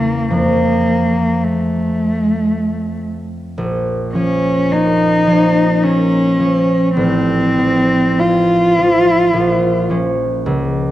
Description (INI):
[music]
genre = classical, romantic duo for cello and harp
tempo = 47-57 BPM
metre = 3/4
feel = rubato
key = Bb minor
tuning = A4 = 435 Hz
[part]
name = warm cello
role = melody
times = 0.0-9.9 s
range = A3 to F4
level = -15 LUFS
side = equal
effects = none
[part]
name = concert harp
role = accompaniment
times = 0.0-10.9 s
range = A1 to F4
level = -16 LUFS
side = equal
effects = none
[sound]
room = moderate concert hall reverb, RT60 2.1 s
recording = dark, warm production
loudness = -12 LUFS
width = side -14 dB against mid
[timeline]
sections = 0.0-3.6 A section; 3.6-10.9 B section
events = none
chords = 0.3 F; 3.6 Bbm; 7.0 F/A; 9.3 Bbm